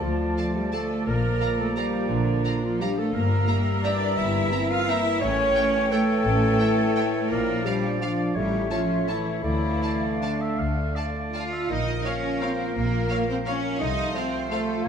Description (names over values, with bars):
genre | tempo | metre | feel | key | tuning
classical | 148-188 BPM | 3/4 | rubato | D minor, Bb minor from 11.7 s | A4 = 440 Hz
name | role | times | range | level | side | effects
large flute ensemble | second line | 0.0-14.9 s | E5 to Bb5 | -35 LUFS | left 1 dB | none
warm clarinet | second line | 0.0-14.9 s | D4 to F5 | -30 LUFS | equal | none
warm oboe | second line | 0.0-14.9 s | Bb4 to F5 | -35 LUFS | equal | none
mellow bassoon | accompaniment | 0.0-14.9 s | E3 to Bb3 | -33 LUFS | right 3 dB | none
rich studio viola section | accompaniment | 0.0-14.6 s | D4 to F5 | -33 LUFS | right 1 dB | none
dark French horn section | sustained chords | 0.0-14.6 s | F3 to F4 | -30 LUFS | equal | none
concert harp | arpeggios | 0.0-14.9 s | G2 to F6 | -34 LUFS | left 6 dB | none
rich studio cello section | bass | 0.0-14.9 s | D3 to F4 | -29 LUFS | right 2 dB | none
rich studio double bass section | bass | 0.0-14.9 s | G1 to D2 | -29 LUFS | equal | none
rich studio violin section | melody | 0.4-14.6 s | F5 to Bb5 | -38 LUFS | equal | none
rich studio violin section | second line | 0.4-14.9 s | A4 to F5 | -38 LUFS | right 1 dB | none
room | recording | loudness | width
wet stone room reverb, RT60 1.2 s | none | -22 LUFS | side -7 dB against mid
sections
0.0-11.7 A section; 11.7-14.9 B section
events
none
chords
0.0 Dm; 1.1 Bb; 3.1 Edim/G; 5.2 A7; 7.3 Bb; 8.4 A7; 9.4 Dm; 11.7 Bbm; 13.8 F7/C